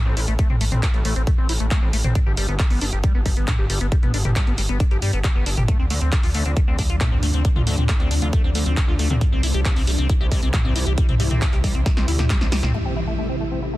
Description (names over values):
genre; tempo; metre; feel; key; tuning
uplifting trance; 136 BPM; 4/4; straight; A minor; A4 = 439 Hz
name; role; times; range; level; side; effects
liquid acid bass; arpeggios; 0.1-13.8 s; G3 to G4; -29 LUFS; left 3 dB; phaser, sidechain pumping, tape echo
gritty driven synth bass; bass; 0.1-12.7 s; G1 to G2; -22 LUFS; equal; sidechain pumping
punchy analog drum machine; drums; 0.2-12.7 s; handclaps, hi-hat, snare drum, toms; -26 LUFS; equal; sidechain pumping on hats, sidechain pumping on cymbals, sidechain pumping on toms
electronic kick drum; drums; 0.4-12.4 s; none; -19 LUFS; equal; none
impact; sound effects; 12.7-13.8 s; none; -27 LUFS; equal; none
room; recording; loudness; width
little or no reverb; dense, heavily limited modern master, lossy compression artefacts; -18 LUFS; side -17 dB against mid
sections
0.0-12.7 A section; 12.7-13.8 B section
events
drum fill 11.9-12.7; band accent 12.6; impact 12.7-13.8; filter sweep on acid bass 12.7-13.8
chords
0.0 Am; 2.2 G; 5.7 Dm7; 9.2 C; 12.7 Am